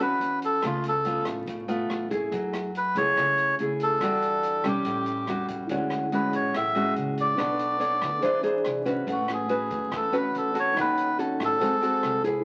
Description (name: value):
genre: bossa nova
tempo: 142 BPM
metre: 4/4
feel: straight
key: A major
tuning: A4 = 441 Hz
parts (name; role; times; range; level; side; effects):
- melodica; melody; 0.0-12.2 s; E#4 to E5; -28 LUFS; equal; none
- nylon-string guitar; accompaniment; 0.0-12.4 s; A2 to C#5; -30 LUFS; equal; none
- upright bass; bass; 0.0-12.4 s; G#1 to A2; -42 LUFS; equal; none
- open jazz drum kit; drums; 0.2-12.3 s; hi-hat, kick drum, rim click; -41 LUFS; equal; none
- mellow tine electric piano; accompaniment; 5.7-12.4 s; A3 to C#6; -35 LUFS; equal; none
room: moderate studio reverb, RT60 0.7 s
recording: very old 78 rpm record, vinyl crackle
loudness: -26 LUFS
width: mono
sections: 0.0-12.4 A section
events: none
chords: 0.0 A69; 0.6 C#7b13; 2.3 F#m9; 4.0 Em9; 4.8 A6; 5.7 Dmaj9#11; 7.4 Bm9; 8.2 E7b13; 9.1 A69; 10.8 D#m7b5; 11.6 G#7b9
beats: 0.20 | 0.62 1.04 1.46 1.89 | 2.31 2.73 3.15 3.58 | 4.00 4.42 4.85 5.27 | 5.69 6.11 6.54 6.96 | 7.38 7.80 8.23 8.65 | 9.07 9.49 9.92 10.34 | 10.76 11.18 11.61 12.03